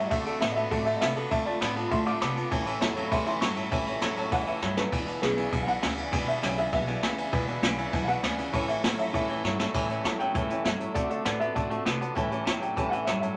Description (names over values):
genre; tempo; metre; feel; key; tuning
rockabilly; 199 BPM; 4/4; straight; A mixolydian; A4 = 439 Hz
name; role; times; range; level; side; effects
dark upright piano; melody; 0.0-13.4 s; B3 to D6; -33 LUFS; equal; none
honky-tonk upright piano; accompaniment; 0.0-13.3 s; B4 to A5; -40 LUFS; equal; none
picked steel-string acoustic guitar; accompaniment; 0.0-13.4 s; A2 to B4; -39 LUFS; equal; none
twangy electric guitar; riff; 0.0-13.4 s; E2 to B3; -34 LUFS; equal; none
upright bass; bass; 0.1-13.3 s; E1 to C3; -39 LUFS; equal; none
jazz brush drum kit; drums; 0.1-13.3 s; crash cymbal, hi-hat, kick drum, ride cymbal, snare drum; -33 LUFS; equal; none
room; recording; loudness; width
moderate small room reverb, RT60 0.5 s; nothing above 10.5 kHz; -28 LUFS; mono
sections
0.0-9.7 A section; 9.7-13.4 B section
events
upright piano solo 0.0-9.7; drum fill 4.6-4.9, 9.4-9.7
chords
0.1 D7; 1.3 Dm7; 2.5 A7; 4.9 E7; 8.5 A7; 11.0 D7; 12.2 A7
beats
| 0.11 0.41 0.71 1.01 | 1.31 1.61 1.91 2.21 | 2.51 2.81 3.12 3.42 | 3.72 4.02 4.32 4.62 | 4.92 5.22 5.52 5.82 | 6.12 6.43 6.73 7.03 | 7.33 7.63 7.93 8.23 | 8.54 8.84 9.14 9.44 | 9.74 10.04 10.35 10.65 | 10.95 11.26 11.56 11.86 | 12.16 12.46 12.77 13.07